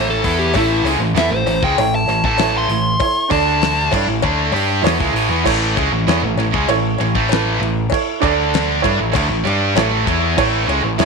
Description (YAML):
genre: classic rock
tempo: 98 BPM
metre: 4/4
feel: straight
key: A mixolydian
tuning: A4 = 441 Hz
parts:
  - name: fuzz lead guitar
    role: melody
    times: 0.0-3.9 s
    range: E4 to C6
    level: -18 LUFS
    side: left 2 dB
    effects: distortion, slapback echo
  - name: warm upright piano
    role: accompaniment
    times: 0.0-11.1 s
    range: D4 to B5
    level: -22 LUFS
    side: right 11 dB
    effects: none
  - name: tight distorted guitar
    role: riff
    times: 0.0-11.1 s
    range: A2 to G4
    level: -22 LUFS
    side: left 14 dB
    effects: distortion
  - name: tight distorted guitar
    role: riff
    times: 0.0-11.1 s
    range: A2 to G4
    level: -21 LUFS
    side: right 13 dB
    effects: distortion
  - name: growling picked electric bass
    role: bass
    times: 0.0-11.1 s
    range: A1 to G2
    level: -21 LUFS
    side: equal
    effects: overdrive
  - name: damped 70s drum kit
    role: drums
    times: 0.2-11.1 s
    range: crash cymbal, hi-hat, kick drum, snare drum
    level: -23 LUFS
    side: left 5 dB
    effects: none
  - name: cowbell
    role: percussion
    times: 0.5-10.8 s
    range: none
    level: -27 LUFS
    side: left 15 dB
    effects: none
room: light reverb, small room ambience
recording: 1960s-style stereo with parts hard left and right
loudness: -14 LUFS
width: side -4 dB against mid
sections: 0.0-5.5 A section; 5.5-11.1 B section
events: lead electric guitar solo 0.0-5.5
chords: 0.0 A; 3.3 D5; 3.9 A; 8.2 D5; 8.8 A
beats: | 0.54 1.16 1.77 2.38 | 3.00 3.61 4.23 4.84 | 5.45 6.07 6.68 7.30 | 7.91 8.53 9.14 9.76 | 10.37 10.99